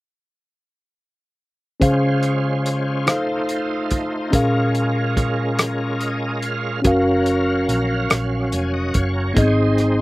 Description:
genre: slow gospel.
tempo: 48 BPM (dotted quarters).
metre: 6/8.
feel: straight.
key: Db major.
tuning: A4 = 440 Hz.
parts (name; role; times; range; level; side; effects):
mellow tine electric piano; accompaniment; 1.8-10.0 s; Ab2 to F5; -19 LUFS; equal; none.
bright tonewheel organ; sustained chords; 1.8-10.0 s; Gb3 to Ab5; -25 LUFS; right 2 dB; slow rotary speaker, overdrive, chorus vibrato.
warm soul drum kit; drums; 1.8-10.0 s; hi-hat, kick drum, rim click; -20 LUFS; equal; none.
hollow-body short-scale fingered electric bass; bass; 6.8-10.0 s; F1 to Bb1; -23 LUFS; equal; none.
room: little or no reverb.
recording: none.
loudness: -17 LUFS.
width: side -19 dB against mid.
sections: 1.8-10.0 A section.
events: tonewheel organ fill 5.6-6.8.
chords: 1.8 Dbmaj7; 3.1 F7; 4.3 Bbm7; 6.8 Gbmaj7; 9.4 Ab.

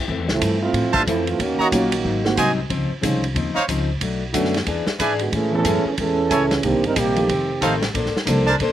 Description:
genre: jazz, big band swing.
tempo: 183 BPM.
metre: 4/4.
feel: swing 61% on 8ths.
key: unclear.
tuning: A4 = 444 Hz.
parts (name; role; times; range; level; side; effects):
upright bass; bass; 0.0-8.7 s; F1 to A2; -26 LUFS; equal; none.
picked plugged-in steel-string acoustic guitar; accompaniment; 0.1-8.7 s; F2 to C5; -25 LUFS; left 5 dB; none.
vintage drum kit; drums; 0.1-8.7 s; hi-hat, kick drum, ride cymbal, snare drum; -26 LUFS; right 1 dB; none.
warm trombone section; second line; 0.3-2.6, 5.2-7.8 s; D3 to Bb4; -21 LUFS; right 3 dB; none.
clear trumpet section; stabs; 0.9-8.6 s; D4 to Bb5; -21 LUFS; right 2 dB; none.
dark baby grand piano; accompaniment; 1.7-8.5 s; D3 to A4; -23 LUFS; right 2 dB; none.
room: little or no reverb.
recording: recorded outdoors, with no room sound.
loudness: -18 LUFS.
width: side -11 dB against mid.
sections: 0.1-8.7 A section.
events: trombone section solo 0.1-8.7.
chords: 0.1 Fmaj7; 1.4 Ebm7; 2.0 Ab7; 2.7 Dbmaj9; 4.0 Bm7; 4.7 E7; 5.3 Amaj7; 6.6 Cm7; 7.3 F7; 7.9 Bbmaj9.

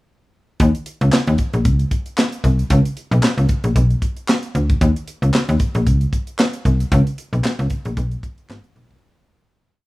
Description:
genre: early-eighties boogie funk.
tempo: 114 BPM.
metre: 4/4.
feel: swing 56% on 16ths.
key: unclear.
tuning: A4 = 436 Hz.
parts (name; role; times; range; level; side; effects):
slap-like FM bass; bass; 0.6-9.0 s; Ab1 to Eb2; -15 LUFS; equal; none.
tight funk drum kit; drums; 0.6-9.0 s; handclaps, hi-hat, kick drum, snare drum; -19 LUFS; equal; none.
group handclap; percussion; 1.1-8.6 s; none; -30 LUFS; left 2 dB; none.
room: little or no reverb.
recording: rough home demo mix, small room ambience.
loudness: -16 LUFS.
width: side -20 dB against mid.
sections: 0.6-9.0 breakdown.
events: fade-out 6.9-9.0.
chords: none.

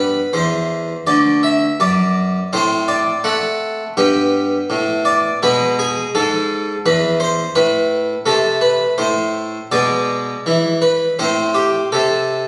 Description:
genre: classical, baroque-style suite movement for harpsichord.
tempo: 83 BPM.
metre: 4/4.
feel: rubato.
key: unclear.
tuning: A4 = 440 Hz.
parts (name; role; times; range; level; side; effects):
harpsichord; solo; 0.0-12.5 s; D2 to G5; -17 LUFS; equal; none.
room: moderate recital hall reverb, RT60 1.3 s.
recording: recorded on a phone in the room, studio reverb, vinyl crackle.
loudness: -17 LUFS.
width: mono.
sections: 0.0-12.5 A section.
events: none.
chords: 0.0 G; 2.5 Am6; 4.0 G; 5.4 E; 8.3 Am/C; 9.7 E7/B; 11.2 Am.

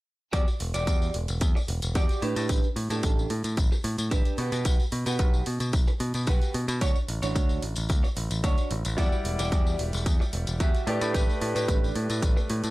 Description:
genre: nu-disco, nu disco.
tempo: 111 BPM.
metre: 4/4.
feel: straight.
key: E dorian.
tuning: A4 = 440 Hz.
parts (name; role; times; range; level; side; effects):
electric guitar at the edge of break-up; riff; 0.3-12.5 s; D4 to E5; -33 LUFS; right 3 dB; lush chorus, slapback echo.
picked electric bass; bass; 0.3-12.7 s; E1 to B2; -29 LUFS; equal; none.
electronic hi-hat; drums; 0.3-12.7 s; none; -38 LUFS; right 2 dB; overdrive.
electronic kick drum; drums; 0.3-12.3 s; none; -24 LUFS; equal; overdrive.
tambourine; percussion; 0.3-12.7 s; none; -37 LUFS; left 3 dB; none.
bright concert grand piano; accompaniment; 9.0-12.7 s; G3 to F#5; -32 LUFS; equal; slapback echo.
room: digital ambience.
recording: lossy compression artefacts.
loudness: -24 LUFS.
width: side -18 dB against mid.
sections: 0.3-12.7 A section.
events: none.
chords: 0.3 Em9; 2.2 A9sus4; 4.4 Gmaj7/B; 6.8 Dmaj7; 9.0 Em9; 10.9 A9sus4.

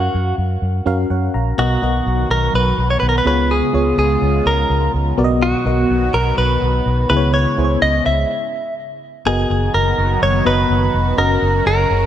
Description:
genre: pop.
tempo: 125 BPM.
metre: 4/4.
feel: straight.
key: unclear.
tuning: A4 = 440 Hz.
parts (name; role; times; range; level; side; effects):
direct-recorded clean electric guitar; melody; 0.0-12.1 s; F#4 to E5; -18 LUFS; equal; ping-pong delay.
FM electric piano with auto-pan; accompaniment; 0.0-12.1 s; B2 to A#5; -21 LUFS; left 1 dB; none.
vintage muted fingered electric bass; bass; 0.0-12.1 s; E#1 to F#2; -18 LUFS; equal; none.
lush unison pad; sustained chords; 1.6-12.1 s; C#3 to F#4; -24 LUFS; right 1 dB; chorus, phaser.
room: moderate lush hall reverb, RT60 2.0 s.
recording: none.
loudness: -14 LUFS.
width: side -10 dB against mid.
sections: 0.0-1.6 A section; 1.6-9.3 B section; 9.3-12.1 C section.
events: stop 8.3-9.3.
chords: 0.0 F#maj7; 1.6 Bmaj7; 3.3 C#7; 5.2 Bmaj7; 7.1 C#m7; 9.3 Bmaj7/F#; 11.2 F#6.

